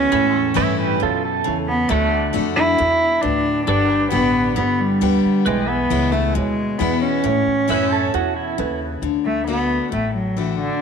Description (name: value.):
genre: honky-tonk and classic country.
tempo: 135 BPM.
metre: 4/4.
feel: straight.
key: D major.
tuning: A4 = 440 Hz.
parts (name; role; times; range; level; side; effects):
warm cello; melody; 0.0-10.8 s; D3 to E4; -19 LUFS; right 1 dB; none.
dark upright piano; accompaniment; 0.0-9.0 s; C#4 to D5; -28 LUFS; right 12 dB; none.
picked steel-string acoustic guitar; accompaniment; 0.0-10.8 s; E2 to G4; -24 LUFS; left 12 dB; none.
pedal steel guitar; sustained chords; 0.0-9.0 s; G#4 to A5; -29 LUFS; equal; wide subtle chorus.
upright bass; bass; 0.0-10.7 s; G1 to A2; -26 LUFS; equal; none.
pedal steel guitar; second line; 0.6-1.6, 7.7-8.8 s; E4 to E5; -24 LUFS; right 10 dB; none.
room: moderate plate reverb, RT60 2.8 s.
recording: 1960s-style stereo with parts hard left and right.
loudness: -16 LUFS.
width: side -6 dB against mid.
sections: 0.0-9.0 A section; 9.0-10.8 B section.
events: cello solo 9.0-10.8.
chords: 0.1 A; 1.9 D; 3.7 G; 5.5 E; 7.3 A; 9.0 D.